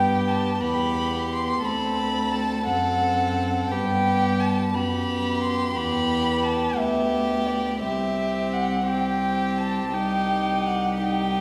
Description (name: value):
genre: classical, slow romantic movement for string quartet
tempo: 58 BPM (dotted quarters)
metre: 12/8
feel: rubato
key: G major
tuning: A4 = 437 Hz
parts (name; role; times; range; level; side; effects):
- dark violin; melody; 0.0-11.4 s; D5 to C6; -28 LUFS; equal; none
- rich violin; second line; 0.0-11.4 s; G4 to A4; -32 LUFS; equal; none
- warm viola; accompaniment; 0.0-11.4 s; B3 to Eb4; -30 LUFS; equal; none
- warm cello; bass; 0.0-11.4 s; C2 to G2; -30 LUFS; equal; none
room: wet recital hall reverb, RT60 1.8 s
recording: heard from further back in the room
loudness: -24 LUFS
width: mono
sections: 0.0-11.4 A section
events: none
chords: 0.0 G; 1.6 D7; 3.7 G; 5.8 Em; 7.8 C; 9.9 Cm